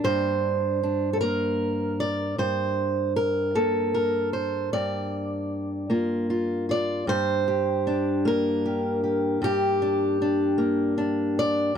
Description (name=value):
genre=folk, solo fingerstyle acoustic guitar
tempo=51 BPM (dotted quarters)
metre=6/8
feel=straight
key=G minor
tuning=A4 = 439 Hz
part: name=fingerpicked steel-string acoustic guitar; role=solo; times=0.0-11.8 s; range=G2 to D5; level=-22 LUFS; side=equal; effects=none
room=little or no reverb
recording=dry, close 1970s-style studio recording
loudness=-23 LUFS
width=side -8 dB against mid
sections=0.0-7.1 A section; 7.1-11.8 A section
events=none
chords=0.0 Gm; 2.4 Gmadd9; 4.7 Gm7; 7.1 Gm